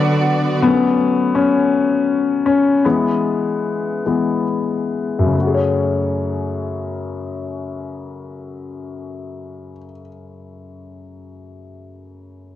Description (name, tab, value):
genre	pop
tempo	44-56 BPM (dotted quarters)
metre	6/8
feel	straight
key	F# minor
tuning	A4 = 444 Hz
part	clear concert grand piano	accompaniment	0.0-12.6 s	F#2 to C#5	-18 LUFS	left 3 dB	cassette tape
part	rich studio string section	sustained chords	0.0-0.6 s	D3 to D5	-20 LUFS	right 3 dB	cassette tape
room	light reverb, small room ambience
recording	home recording on cassette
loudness	-16 LUFS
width	side -12 dB against mid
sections	0.0-5.4 A section; 5.4-10.8 B section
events	grand piano solo 0.0-5.4; slowing down 0.6-5.4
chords	0.0 Bm/D; 0.6 F#m; 2.8 E; 5.4 F#madd9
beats	| 0.63 1.72 | 2.85 4.05 | 5.35 6.72 | 8.09 9.46